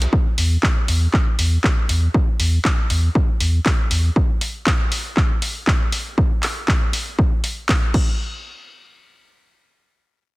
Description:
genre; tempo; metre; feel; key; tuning
acid house; 119 BPM; 4/4; swing 56% on 16ths; unclear; A4 = 440 Hz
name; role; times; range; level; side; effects
saturated sub bass; bass; 0.0-4.1 s; E2; -17 LUFS; equal; tube saturation, sidechain pumping
punchy analog drum machine; drums; 0.0-8.1 s; crash cymbal, handclaps, hi-hat; -24 LUFS; equal; none
electronic kick drum; drums; 0.1-8.1 s; none; -18 LUFS; equal; none
room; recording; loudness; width
little or no reverb; heavily compressed radio sound, multiband compression; -16 LUFS; side -22 dB against mid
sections
0.0-8.2 A section; 8.2-10.4 B section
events
filter sweep on sub bass 0.0-4.2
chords
none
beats
| 0.13 0.63 1.14 1.64 | 2.14 2.65 3.15 3.66 | 4.16 4.67 5.17 5.67 | 6.18 6.68 7.19 7.69

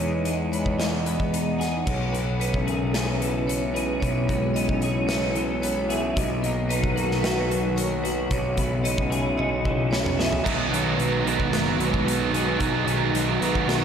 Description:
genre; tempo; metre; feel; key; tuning
post-rock; 112 BPM; 4/4; straight; B major; A4 = 440 Hz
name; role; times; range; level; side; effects
phased analog pad; sustained chords; 0.0-13.8 s; B2 to G#4; -31 LUFS; equal; phaser, chorus, tremolo
twelve-string electric guitar; arpeggios; 0.0-13.8 s; B2 to G#4; -28 LUFS; left 2 dB; ensemble chorus, tape echo
vibraphone with medium hard mallets; arpeggios; 0.0-13.8 s; A#4 to F#5; -30 LUFS; right 3 dB; tape echo
fuzz picked electric bass; bass; 0.0-13.8 s; F#1 to E2; -28 LUFS; equal; overdrive
big rock drum kit; drums; 0.3-13.8 s; crash cymbal, hi-hat, kick drum, snare drum, toms; -29 LUFS; left 1 dB; none
tight distorted guitar; riff; 10.4-13.8 s; B2 to F#4; -24 LUFS; right 6 dB; distortion
room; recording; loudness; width
wet lush hall reverb, RT60 1.9 s, small room ambience; dreamy mix soaked in reverb; -22 LUFS; side -8 dB against mid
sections
0.0-1.9 A section; 1.9-10.5 B section; 10.5-13.8 A section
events
drum fill 9.4-10.5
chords
0.0 Emaj7; 1.9 C#m7/B; 6.2 Bmaj7; 8.3 E6/B; 10.5 B6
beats
0.25 0.79 1.32 | 1.86 2.40 2.94 3.48 | 4.01 4.55 5.09 5.63 | 6.16 6.70 7.24 7.77 | 8.31 8.85 9.38 9.92 | 10.46 10.99 11.53 12.07 | 12.61 13.14 13.68

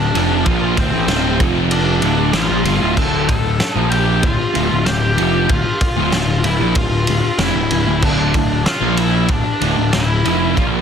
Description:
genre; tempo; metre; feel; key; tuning
quiet-loud alternative rock; 95 BPM; 4/4; straight; D minor; A4 = 440 Hz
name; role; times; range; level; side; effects
octave-fuzz lead guitar; melody; 0.0-10.7 s; C4 to A5; -21 LUFS; left 2 dB; distortion, tape echo
raw garage guitar; riff; 0.0-10.8 s; D2 to Bb3; -21 LUFS; right 14 dB; overdrive
thick fuzz guitar; riff; 0.0-10.8 s; D2 to Bb3; -20 LUFS; left 9 dB; distortion
fuzz picked electric bass; bass; 0.0-10.8 s; D1 to Bb1; -21 LUFS; equal; overdrive
loose indie drum kit; drums; 0.2-10.7 s; crash cymbal, kick drum, ride cymbal, snare drum; -20 LUFS; equal; none
room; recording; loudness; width
studio reverb; dense, heavily limited modern master; -14 LUFS; side -7 dB against mid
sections
0.0-10.8 A section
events
none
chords
0.0 Dm; 1.4 F5; 2.0 Dm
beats
| 0.46 1.08 1.71 2.34 | 2.97 3.60 4.23 4.86 | 5.50 6.13 6.76 7.39 | 8.03 8.66 9.30 9.93 | 10.57

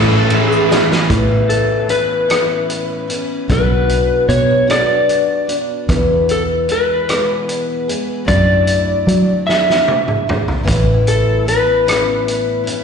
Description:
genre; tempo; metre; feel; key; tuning
folk rock and heartland rock; 50 BPM (dotted quarters); 6/8; straight; A major; A4 = 439 Hz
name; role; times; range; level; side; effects
electric slide guitar; melody; 0.0-12.8 s; A4 to E5; -16 LUFS; left 1 dB; slapback echo
picked twelve-string acoustic guitar; accompaniment; 0.0-12.8 s; E2 to G#4; -20 LUFS; left 2 dB; slapback echo
warm upright piano; accompaniment; 0.0-1.1 s; none; barely audible; none; none
dark symphonic string section; sustained chords; 0.0-1.1 s; C#5 to E6; -30 LUFS; left 4 dB; none
crunchy overdriven guitar; riff; 0.0-1.1 s; A2 to E4; -17 LUFS; right 2 dB; slapback echo
fingered electric bass; bass; 0.0-12.0 s; A1 to F#3; -17 LUFS; equal; none
loose indie drum kit; drums; 0.3-12.8 s; hi-hat, kick drum, ride cymbal, rim click, snare drum, toms; -20 LUFS; right 1 dB; none
tube shaker; percussion; 0.5-0.8 s; none; -42 LUFS; right 6 dB; none
room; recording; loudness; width
light reverb, small room ambience; live gig heard through the venue's PA, recital hall reverb, nothing above 10.7 kHz; -13 LUFS; side -6 dB against mid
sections
0.0-1.1 A section; 1.1-12.8 B section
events
drum fill 0.7-1.1, 9.5-10.7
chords
0.0 A; 1.1 Aadd9; 3.5 Bm; 5.9 E; 8.3 Dadd9/F#; 10.7 Aadd9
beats
| 1.10 2.30 | 3.49 4.69 | 5.89 7.08 | 8.28 9.48 | 10.67 11.87

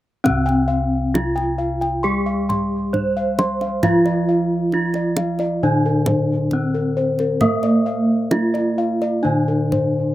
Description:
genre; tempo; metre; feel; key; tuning
Javanese gamelan; 67 BPM; 4/4; straight; C slendro; A4 = 441 Hz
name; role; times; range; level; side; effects
gamelan-type bronze metallophone; melody; 0.2-10.1 s; Bb3-45c to C5; -21 LUFS; equal; none
gamelan-type bronze metallophone; accompaniment; 0.2-10.1 s; C3 to Bb3-45c; -22 LUFS; right 1 dB; slapback echo
gamelan-type bossed gongs; arpeggios; 0.2-10.0 s; Bb4-45c to C6; -24 LUFS; left 3 dB; slapback echo
gamelan-type bossed gongs; bass; 0.2-10.1 s; C2 to Bb4-45c; -26 LUFS; equal; none
kendang; percussion; 0.3-9.9 s; none; -25 LUFS; right 1 dB; none
room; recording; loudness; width
little or no reverb; recorded outdoors, with no room sound; -17 LUFS; side -14 dB against mid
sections
0.2-10.1 A section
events
none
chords
none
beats
| 0.25 1.14 2.04 2.94 | 3.83 4.73 5.62 6.52 | 7.41 8.32 9.24

